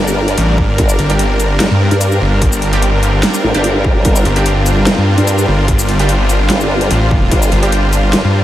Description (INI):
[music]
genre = heavy wobble dubstep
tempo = 147 BPM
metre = 4/4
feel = half-time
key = G minor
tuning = A4 = 440 Hz
[part]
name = supersaw pad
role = sustained chords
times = 0.0-8.4 s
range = G3 to Bb4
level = -18 LUFS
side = equal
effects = sidechain pumping
[part]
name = formant-sweep wobble bass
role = bass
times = 0.0-8.2 s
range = F1 to G2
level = -14 LUFS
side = equal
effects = chorus, overdrive
[part]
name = clear studio string section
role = texture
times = 0.0-8.4 s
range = C4 to D5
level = -21 LUFS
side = left 2 dB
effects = sidechain pumping
[part]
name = dubstep drum kit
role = drums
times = 0.1-8.2 s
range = hi-hat, shaker, snare drum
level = -19 LUFS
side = equal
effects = none
[part]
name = snarling distorted saw bass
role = bass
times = 0.4-8.4 s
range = G1 to G2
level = -13 LUFS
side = equal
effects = distortion, overdrive
[part]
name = electronic kick drum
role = drums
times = 0.6-7.4 s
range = none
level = -15 LUFS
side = equal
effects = distortion
[part]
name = orchestra-hit-like synth stab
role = stabs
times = 1.1-8.4 s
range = G3 to G4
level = -22 LUFS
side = right 2 dB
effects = built-in reverb, diffuse ambient delay
[sound]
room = light reverb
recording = none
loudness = -10 LUFS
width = side -13 dB against mid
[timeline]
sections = 0.0-8.4 A section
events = none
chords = 0.0 Gm